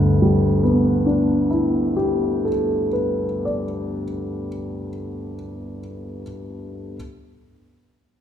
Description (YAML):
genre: classical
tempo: 40 BPM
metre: 4/4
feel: rubato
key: G major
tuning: A4 = 436 Hz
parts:
  - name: warm grand piano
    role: accompaniment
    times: 0.0-7.0 s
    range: G1 to D5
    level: -20 LUFS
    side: equal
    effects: none
room: wet recital hall reverb, RT60 1.9 s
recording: minimal, uncompressed stereo recording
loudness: -18 LUFS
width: side -9 dB against mid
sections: 0.0-4.8 A section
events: none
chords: 0.0 G69